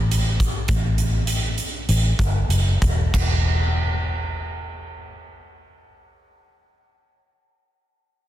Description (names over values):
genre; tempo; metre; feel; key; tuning
rock, shoegaze and dream pop; 92-105 BPM; 4/4; straight; unclear; A4 = 439 Hz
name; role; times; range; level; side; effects
vintage muted fingered electric bass; bass; 0.0-7.2 s; E1 to A1; -21 LUFS; equal; none
huge arena drum kit; drums; 0.1-3.3 s; crash cymbal, hi-hat, kick drum; -24 LUFS; equal; none
room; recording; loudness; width
little or no reverb; dense, heavily limited modern master; -19 LUFS; side -13 dB against mid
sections
0.0-3.1 A section; 3.1-5.7 B section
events
slowing down 0.0-3.1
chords
none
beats
0.11 | 0.69 1.27 1.88 2.50 | 3.14 3.79 4.44 5.09